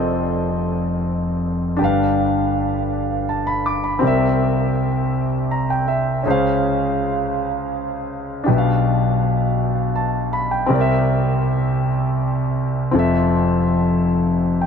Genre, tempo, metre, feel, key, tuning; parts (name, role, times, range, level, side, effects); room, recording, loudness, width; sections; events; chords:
gospel; 54 BPM (dotted quarters); 6/8; straight; F major; A4 = 440 Hz
warm concert grand piano; solo; 0.0-14.7 s; F1 to D6; -17 LUFS; equal
moderate huge ambient reverb, RT60 6.9 s; -17 LUFS; side -6 dB against mid
0.0-14.7 A section
grand piano fill 5.1-6.3
0.0 F7; 1.8 G7; 4.0 C7; 6.3 Dbmaj7; 8.5 G7/B; 10.7 C7; 12.9 Fmaj7